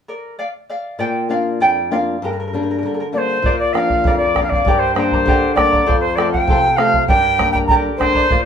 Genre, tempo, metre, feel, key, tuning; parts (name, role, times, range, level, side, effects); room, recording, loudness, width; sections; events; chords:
andean folk, Andean ensemble; 98 BPM; 2/4; straight; A4 = 437 Hz
charango; accompaniment; 0.1-8.5 s; G4 to Bb5; -21 LUFS; right 1 dB
flamenco guitar; accompaniment; 1.0-8.5 s; F2 to F4; -20 LUFS; left 2 dB
bright reedy quena; melody; 3.1-8.4 s; C5 to Bb5; -16 LUFS; equal
bombo; percussion; 3.4-8.4 s; -20 LUFS; right 1 dB
wet studio reverb, RT60 0.5 s; band playing live in one room; -14 LUFS; side -8 dB against mid
1.0-3.4 A section; 3.4-8.5 B section
charango solo 1.0-3.4
0.0 Bb; 2.2 Gm; 3.4 Bb; 4.7 Gm; 5.9 F; 7.1 Gm